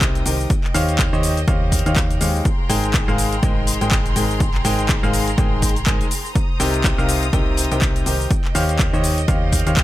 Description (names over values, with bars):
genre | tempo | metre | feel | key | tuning
piano house | 123 BPM | 4/4 | swing 58% on 16ths | Ab major | A4 = 441 Hz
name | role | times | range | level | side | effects
dark studio string section | sustained chords | 0.0-9.8 s | Ab4 to Eb6 | -29 LUFS | equal | sidechain pumping
clear upright piano | riff | 0.0-9.8 s | C3 to Ab5 | -22 LUFS | left 1 dB | sidechain pumping, digital delay
solid FM bass | bass | 0.0-9.8 s | Ab1 to Eb2 | -22 LUFS | equal | sidechain pumping
electronic kick drum | drums | 0.0-9.8 s | none | -20 LUFS | equal | overdrive
house drum kit | drums | 0.0-9.8 s | handclaps, hi-hat, shaker | -24 LUFS | left 2 dB | overdrive
room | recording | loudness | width
little or no reverb | none | -16 LUFS | side -15 dB against mid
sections
0.0-9.8 A section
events
none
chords
0.0 Cm7; 0.5 Eb13; 2.5 Abmaj9; 6.4 Cm7; 8.3 Eb13